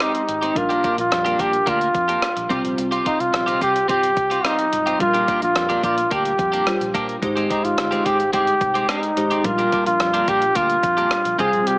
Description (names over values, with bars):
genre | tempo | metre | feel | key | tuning
1980s-style pop | 108 BPM | 4/4 | straight | Bb mixolydian | A4 = 440 Hz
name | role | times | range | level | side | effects
warm flugelhorn | melody | 0.0-11.8 s | Eb4 to Ab4 | -19 LUFS | equal | none
glassy digital keys | accompaniment | 0.0-11.8 s | Ab2 to C5 | -26 LUFS | equal | chorus
twelve-string electric guitar | riff | 0.0-11.7 s | Ab3 to G4 | -25 LUFS | right 1 dB | wide subtle chorus
clean 12-bit digital drum machine | drums | 0.0-11.8 s | hi-hat, kick drum, rim click | -26 LUFS | equal | none
vintage muted fingered electric bass | bass | 0.3-11.8 s | G1 to Bb2 | -35 LUFS | equal | none
room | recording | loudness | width
moderate plate reverb, RT60 2.3 s | small speaker sound | -17 LUFS | side -25 dB against mid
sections
0.0-11.8 A section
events
none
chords
0.0 Abmaj7; 0.6 Bb6; 2.5 Fsus2; 5.0 Bb6; 7.2 Abmaj7; 9.4 Bb6